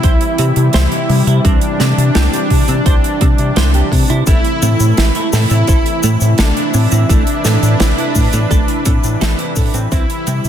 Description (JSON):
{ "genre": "synthwave", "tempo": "85 BPM", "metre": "4/4", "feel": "straight", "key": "A minor", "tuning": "A4 = 440 Hz", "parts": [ { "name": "soft supersaw", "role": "melody", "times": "0.0-10.5 s", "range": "D4 to E4", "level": "-20 LUFS", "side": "right 1 dB", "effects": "vintage 12-bit sampler grit" }, { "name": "lush unison pad", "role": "sustained chords", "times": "0.0-10.5 s", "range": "C3 to B4", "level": "-20 LUFS", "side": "left 1 dB", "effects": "chorus, sidechain pumping" }, { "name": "thumb-piano-like synth pluck", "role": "arpeggios", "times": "0.0-10.5 s", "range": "G3 to C5", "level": "-24 LUFS", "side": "right 2 dB", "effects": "chorus, tape echo" }, { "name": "clean electric guitar", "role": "riff", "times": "0.0-10.3 s", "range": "A3 to C5", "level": "-24 LUFS", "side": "right 5 dB", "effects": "analog chorus, tape echo" }, { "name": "round analog bass", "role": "bass", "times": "0.0-10.5 s", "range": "A1 to C3", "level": "-14 LUFS", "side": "equal", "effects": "sidechain pumping" }, { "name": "electronic kick drum", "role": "drums", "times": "0.0-10.1 s", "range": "none", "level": "-14 LUFS", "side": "equal", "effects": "none" }, { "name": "gated 80s drum kit", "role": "drums", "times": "0.0-10.5 s", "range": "cabasa, hi-hat, snare drum", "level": "-20 LUFS", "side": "right 1 dB", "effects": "none" } ], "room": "light reverb, studio ambience", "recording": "dense, heavily limited modern master", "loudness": "-11 LUFS", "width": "side -9 dB against mid", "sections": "0.0-10.5 A section", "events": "fade-out 8.0-10.5", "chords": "0.0 C; 4.3 Am; 9.9 C" }